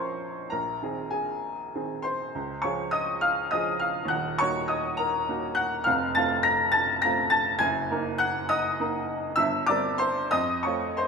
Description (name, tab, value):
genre	classical, romantic character piece for solo piano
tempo	68 BPM (dotted quarters)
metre	6/8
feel	rubato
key	unclear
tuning	A4 = 441 Hz
part	clear upright piano	solo	0.0-11.1 s	Eb1 to Bb6	-24 LUFS	equal	none
room	moderate recital hall reverb, RT60 1.6 s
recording	minimal, uncompressed stereo recording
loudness	-24 LUFS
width	side -5 dB against mid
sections	0.0-11.1 A section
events	none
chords	0.0 Bbm; 0.5 Ab/Bb; 2.3 Db; 4.1 Ebm; 5.9 F; 7.6 Ebm/Gb; 9.4 C7/G; 10.3 F